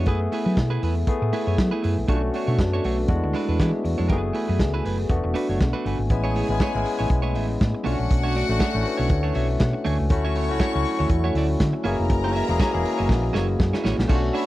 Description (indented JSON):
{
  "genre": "disco",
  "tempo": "120 BPM",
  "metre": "4/4",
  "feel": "swing 56% on 16ths",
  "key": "unclear",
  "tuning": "A4 = 440 Hz",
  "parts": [
    { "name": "barky tine electric piano", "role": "accompaniment", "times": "0.0-14.5 s", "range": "G#3 to G#5", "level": "-27 LUFS", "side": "left 3 dB", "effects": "none" },
    { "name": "clean electric guitar", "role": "accompaniment", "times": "0.0-14.5 s", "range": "G#3 to E5", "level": "-30 LUFS", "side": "right 6 dB", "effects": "none" },
    { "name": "dark French horn section", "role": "sustained chords", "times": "0.0-6.1, 10.1-14.5 s", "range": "A2 to G#4", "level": "-30 LUFS", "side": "right 1 dB", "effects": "none" },
    { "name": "hollow-body short-scale fingered electric bass", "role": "bass", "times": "0.0-14.3 s", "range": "E1 to F#3", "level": "-24 LUFS", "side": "equal", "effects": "none" },
    { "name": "vintage drum kit", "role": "drums", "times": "0.1-14.5 s", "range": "crash cymbal, hi-hat, kick drum, snare drum", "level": "-24 LUFS", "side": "equal", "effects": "none" },
    { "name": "dark chamber string section", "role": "second line", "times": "6.1-14.5 s", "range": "E4 to C#6", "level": "-30 LUFS", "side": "left 4 dB", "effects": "none" }
  ],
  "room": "studio reverb",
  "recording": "dry, close 1970s-style studio recording",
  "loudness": "-20 LUFS",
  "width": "side -16 dB against mid",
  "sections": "0.0-6.1 A section; 6.1-14.1 B section",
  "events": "tine electric piano fill 5.1-6.1, 8.6-10.1; drum fill 13.1-14.1",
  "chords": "0.1 F#m11; 2.1 Bm9; 3.1 E7; 4.1 F#m11; 5.1 E9sus4; 6.1 Amaj7; 7.9 Bm9; 10.1 Dmaj9; 11.9 F#9"
}